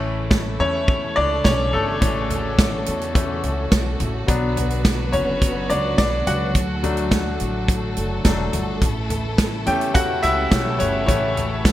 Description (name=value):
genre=piano-driven pop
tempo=106 BPM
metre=4/4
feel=straight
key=unclear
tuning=A4 = 440 Hz
part: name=bright grand piano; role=accompaniment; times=0.0-11.7 s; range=E3 to G5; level=-22 LUFS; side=left 2 dB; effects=none
part: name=warm studio string section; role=sustained chords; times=0.0-11.7 s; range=C#3 to B4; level=-28 LUFS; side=equal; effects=none
part: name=upright bass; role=bass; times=0.0-11.7 s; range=E1 to E2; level=-26 LUFS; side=equal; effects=none
part: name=natural country drum kit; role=drums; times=0.3-11.7 s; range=hi-hat, kick drum, snare drum, toms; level=-20 LUFS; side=equal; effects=gated reverb
room=moderate plate reverb, RT60 1.3 s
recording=bright 1980s-style digital production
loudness=-18 LUFS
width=side -13 dB against mid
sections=0.0-11.7 A section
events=grand piano solo 0.0-11.7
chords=0.0 A; 4.3 Bm; 6.6 D; 8.8 A